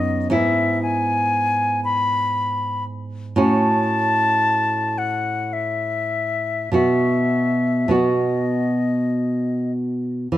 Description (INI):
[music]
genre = romantic duo for flute and classical guitar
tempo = 48-60 BPM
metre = 3/4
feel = rubato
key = unclear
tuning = A4 = 441 Hz
[part]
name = concert flute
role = melody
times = 0.0-9.7 s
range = D#5 to B5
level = -21 LUFS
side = left 2 dB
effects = none
[part]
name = nylon-string guitar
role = accompaniment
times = 0.0-10.4 s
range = F#2 to F#4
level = -20 LUFS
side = right 1 dB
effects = none
[sound]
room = moderate recital hall reverb, RT60 1.6 s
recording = close, detailed microphones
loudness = -18 LUFS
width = side -14 dB against mid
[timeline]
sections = 0.0-10.3 A section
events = none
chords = 0.3 E/G#; 3.4 F#m/A; 6.7 B